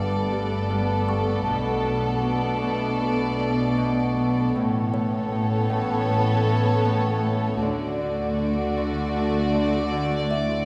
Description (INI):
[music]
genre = cinematic, suspense film score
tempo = 78 BPM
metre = 4/4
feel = straight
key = B minor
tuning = A4 = 439 Hz
[part]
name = warm studio violin section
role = melody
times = 0.0-10.7 s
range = C#5 to D5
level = -36 LUFS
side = equal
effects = none
[part]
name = dark studio violin section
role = second line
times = 0.0-10.7 s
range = F#4 to A4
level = -31 LUFS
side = equal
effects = none
[part]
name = dark symphonic viola section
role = accompaniment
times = 0.0-10.7 s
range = A3 to B3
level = -34 LUFS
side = equal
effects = none
[part]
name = mellow French horn section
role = sustained chords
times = 0.0-10.7 s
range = A3 to F#4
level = -33 LUFS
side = equal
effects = none
[part]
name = Celtic harp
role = riff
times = 0.0-10.7 s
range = G2 to D4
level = -30 LUFS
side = equal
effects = none
[part]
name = dark studio cello section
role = bass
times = 0.0-10.7 s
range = G2 to D3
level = -32 LUFS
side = equal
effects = none
[part]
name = warm symphonic double bass section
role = bass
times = 0.0-10.7 s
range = G1 to D2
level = -32 LUFS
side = equal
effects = none
[part]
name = music box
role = texture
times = 0.0-10.7 s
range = E4 to C#6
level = -38 LUFS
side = equal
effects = none
[sound]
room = wet concert hall reverb, RT60 2.5 s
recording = recorded in a church or concert hall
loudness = -24 LUFS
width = mono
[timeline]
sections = 0.0-10.7 A section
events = none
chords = 0.0 Gadd9; 1.5 Bm7; 4.5 Aadd9; 7.6 D